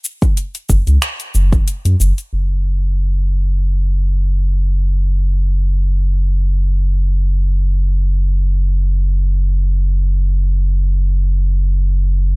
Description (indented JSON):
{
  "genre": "organic downtempo",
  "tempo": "free time",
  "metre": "none",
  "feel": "none",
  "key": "unclear",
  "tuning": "A4 = 440 Hz",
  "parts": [
    { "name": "deep house drum kit", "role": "drums", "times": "0.0-2.3 s", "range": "finger snaps, hi-hat, shaker", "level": "-23 LUFS", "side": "left 1 dB", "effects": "low-pass filter on hats, low-pass filter on perc, low-pass filter on snare" },
    { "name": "electronic kick drum", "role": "drums", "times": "0.2-1.6 s", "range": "none", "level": "-14 LUFS", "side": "equal", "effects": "none" },
    { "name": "round analog bass", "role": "bass", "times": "0.7-12.4 s", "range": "F#1 to F#2", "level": "-14 LUFS", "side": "equal", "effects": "sidechain pumping" }
  ],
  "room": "little or no reverb",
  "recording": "none",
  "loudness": "-14 LUFS",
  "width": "side -31 dB against mid",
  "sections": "0.0-2.3 A section; 2.3-12.4 B section",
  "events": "none",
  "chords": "none"
}